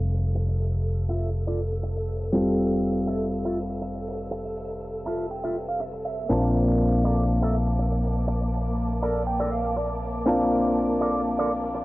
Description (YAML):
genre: nu-disco, nu disco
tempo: 121 BPM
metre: 4/4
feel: swing 53% on 16ths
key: F major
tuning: A4 = 440 Hz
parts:
  - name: warm grand piano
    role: accompaniment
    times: 0.0-11.8 s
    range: G3 to A5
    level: -26 LUFS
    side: left 1 dB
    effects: vintage 12-bit sampler grit, tape echo
  - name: rich symphonic string section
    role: sustained chords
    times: 0.0-11.8 s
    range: Bb3 to E6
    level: -34 LUFS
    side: equal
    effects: none
  - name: picked electric bass with an envelope filter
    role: bass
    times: 0.0-11.8 s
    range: F1 to Bb1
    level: -27 LUFS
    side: equal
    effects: none
  - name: hi-hat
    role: drums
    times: 0.1-11.6 s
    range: none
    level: -42 LUFS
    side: right 1 dB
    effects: studio reverb
  - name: electric guitar with an envelope filter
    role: riff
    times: 0.3-11.8 s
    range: F4 to A5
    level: -30 LUFS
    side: right 1 dB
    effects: lush chorus, low-pass filter, tape echo
room: light reverb, small room ambience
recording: dry, gritty hardware recording, cassette tape, low-pass filter, nothing above 7.9 kHz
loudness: -23 LUFS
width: side -19 dB against mid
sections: 0.0-11.8 A section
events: filter sweep 0.0-11.8; clean electric guitar fill 4.8-6.3, 8.8-10.3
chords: 0.0 Fmaj7; 6.3 Bbmaj7